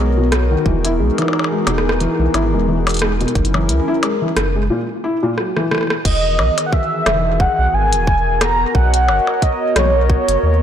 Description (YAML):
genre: IDM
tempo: 89 BPM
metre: 4/4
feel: swing 56% on 16ths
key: E lydian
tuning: A4 = 440 Hz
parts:
  - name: hollow soft pad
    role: sustained chords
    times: 0.0-10.6 s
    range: D#3 to D#5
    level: -22 LUFS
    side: left 1 dB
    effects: chorus
  - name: felt-muted upright piano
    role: arpeggios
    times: 0.0-5.9 s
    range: A#2 to E4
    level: -20 LUFS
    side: left 2 dB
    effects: digital delay
  - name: warm sub bass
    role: bass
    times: 0.0-10.6 s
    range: E1 to D#2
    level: -18 LUFS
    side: equal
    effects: tube saturation
  - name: glitchy drum kit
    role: drums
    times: 0.3-10.4 s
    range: crash cymbal, hi-hat, percussion blips, rim click, toms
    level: -21 LUFS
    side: equal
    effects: soft clipping on snare, digital delay
  - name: electronic kick drum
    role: drums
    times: 0.7-10.2 s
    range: none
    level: -17 LUFS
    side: equal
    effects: none
  - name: warm velvety synth lead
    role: melody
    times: 6.1-10.6 s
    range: C#5 to A#5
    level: -17 LUFS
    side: right 1 dB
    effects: chorus, digital delay
room: moderate echo chamber reverb, RT60 2.1 s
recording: blown-out, overdriven recording, overdrive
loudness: -14 LUFS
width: side -9 dB against mid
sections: 0.0-6.1 A section; 6.1-10.6 B section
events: drum fill 5.4-6.1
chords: 0.0 Bmaj9; 0.7 Emaj9#11; 3.4 F#13; 6.1 Emaj9#11; 8.7 Bmaj9